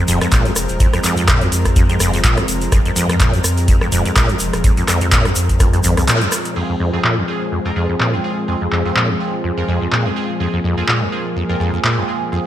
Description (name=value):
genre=acid house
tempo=125 BPM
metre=4/4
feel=swing 55% on 16ths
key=F minor pentatonic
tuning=A4 = 440 Hz
part: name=lush unison pad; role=sustained chords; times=0.0-12.5 s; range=F3 to Bb4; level=-22 LUFS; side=left 1 dB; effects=chorus, sidechain pumping
part: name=acid bass, saw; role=riff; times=0.0-12.4 s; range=F2 to Bb2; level=-19 LUFS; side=equal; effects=overdrive, ensemble chorus, sidechain pumping, ping-pong delay
part: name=warm sub bass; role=bass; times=0.0-6.1 s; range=Eb1 to F2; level=-20 LUFS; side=equal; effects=sidechain pumping
part: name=booming analog drum machine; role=drums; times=0.1-11.9 s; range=crash cymbal, handclaps, hi-hat, rim click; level=-20 LUFS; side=equal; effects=low-pass filter on hats, low-pass filter on snare, low-pass filter on cymbals
part: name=tube shaker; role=percussion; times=0.1-6.5 s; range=none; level=-26 LUFS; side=left 2 dB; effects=none
part: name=electronic kick drum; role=drums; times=0.3-5.7 s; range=none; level=-15 LUFS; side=equal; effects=none
part: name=band-passed chord stab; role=stabs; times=6.6-12.5 s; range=C4 to Bb4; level=-26 LUFS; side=right 4 dB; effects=phaser, wide subtle chorus, ping-pong delay
room=light reverb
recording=bright 1980s-style digital production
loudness=-14 LUFS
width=side -12 dB against mid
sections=0.0-6.6 A section; 6.6-12.5 B section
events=break 6.1-6.6; band accent 6.1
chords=0.0 Fm